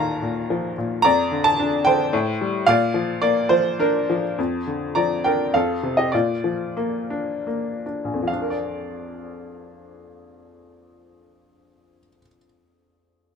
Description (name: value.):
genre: classical, lyrical solo piano.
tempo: 68-112 BPM.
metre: 3/4.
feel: rubato.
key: Bb major.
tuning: A4 = 436 Hz.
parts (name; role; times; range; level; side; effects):
bright upright piano; solo; 0.0-13.4 s; Bb1 to Bb5; -20 LUFS; left 1 dB; none.
room: light reverb.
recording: close, detailed microphones.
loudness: -19 LUFS.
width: side -6 dB against mid.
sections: 0.0-4.4 A section; 4.4-8.3 B section; 8.3-13.4 C section.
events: slowing down 4.4-8.3.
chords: 0.0 Ebsus2; 1.0 F69; 2.1 Am7; 2.7 Bb; 4.4 Bb/F; 5.5 Fadd9; 6.1 Bb.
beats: 0.49 | 1.04 1.58 2.12 | 2.67 3.21 3.79 | 4.38 4.96 5.54 | 6.14 6.77 7.48 | 8.29 9.13 9.97 | 10.79 11.62 12.49.